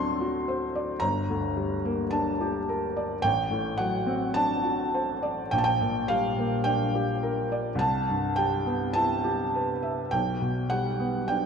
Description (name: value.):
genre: classical, romantic nocturne for solo piano.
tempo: 51-55 BPM.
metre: 4/4.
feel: rubato.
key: G minor.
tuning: A4 = 442 Hz.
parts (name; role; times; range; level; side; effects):
felt-muted upright piano; solo; 0.0-11.5 s; G1 to C6; -25 LUFS; equal; none.
room: wet concert hall reverb, RT60 2.3 s.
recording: dark, warm production.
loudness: -25 LUFS.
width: side -6 dB against mid.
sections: 0.0-11.5 A section.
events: none.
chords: 0.0 D7; 1.0 Gm; 3.2 D7/A; 5.5 Gm/Bb; 7.8 Cmaj7; 10.1 G/B.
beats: 1.02 2.13 | 3.24 4.36 5.52 6.66 | 7.79 8.95 10.12 11.29.